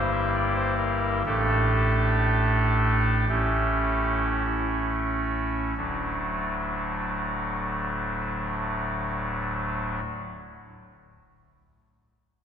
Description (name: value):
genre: classical, chorale-style piece for pipe organ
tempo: 44-69 BPM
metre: 4/4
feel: rubato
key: unclear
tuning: A4 = 440 Hz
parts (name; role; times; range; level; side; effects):
- pipe organ, soft reed; solo; 0.0-10.0 s; D1 to E5; -24 LUFS; equal; none
room: wet church reverb, RT60 2.7 s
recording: minimal, uncompressed stereo recording, faint mains hum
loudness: -24 LUFS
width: side -8 dB against mid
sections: 0.0-5.8 A section; 5.8-11.0 B section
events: slowing down 0.0-5.8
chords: 0.0 Edim/G; 1.3 A7sus4; 3.3 A7; 5.8 D